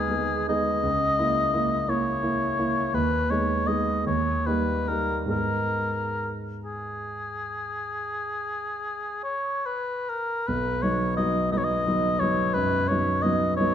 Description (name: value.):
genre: classical, romantic duo for oboe and grand piano.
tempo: 44-59 BPM (dotted quarters).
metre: 12/8.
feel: rubato.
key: G# minor, B major from 10.5 s.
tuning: A4 = 440 Hz.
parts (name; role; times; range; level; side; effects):
warm oboe; melody; 0.0-13.7 s; G#4 to D#5; -26 LUFS; left 2 dB; none.
warm grand piano; accompaniment; 0.0-13.7 s; B1 to E4; -26 LUFS; right 1 dB; none.
room: wet scoring stage reverb, RT60 1.8 s.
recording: none.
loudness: -23 LUFS.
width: side -9 dB against mid.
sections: 0.0-10.5 A section; 10.5-13.7 B section.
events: none.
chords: 0.0 G#m; 0.8 A#dim/C#; 2.9 G#m/D#; 4.1 D#; 5.3 G#m; 10.5 B.